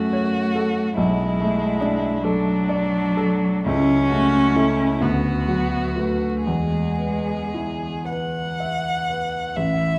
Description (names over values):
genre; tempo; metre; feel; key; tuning
classical, slow romantic movement for piano trio; 36-49 BPM (dotted quarters); 6/8; rubato; unclear; A4 = 439 Hz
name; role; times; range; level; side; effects
rich violin; melody; 0.0-10.0 s; D4 to F#5; -30 LUFS; equal; none
rich cello; second line; 0.0-10.0 s; F#3 to E4; -25 LUFS; equal; none
warm grand piano; accompaniment; 0.0-10.0 s; A1 to E5; -25 LUFS; equal; none
room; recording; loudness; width
wet concert hall reverb, RT60 2.3 s; dark, warm production, vinyl crackle; -22 LUFS; mono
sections
0.0-9.6 A section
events
none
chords
0.0 F#m; 1.0 Bm7; 3.7 A/C#; 5.0 Bm/D; 6.5 E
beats
| 0.97 2.25 | 3.66 5.03 | 6.48 8.09 | 9.56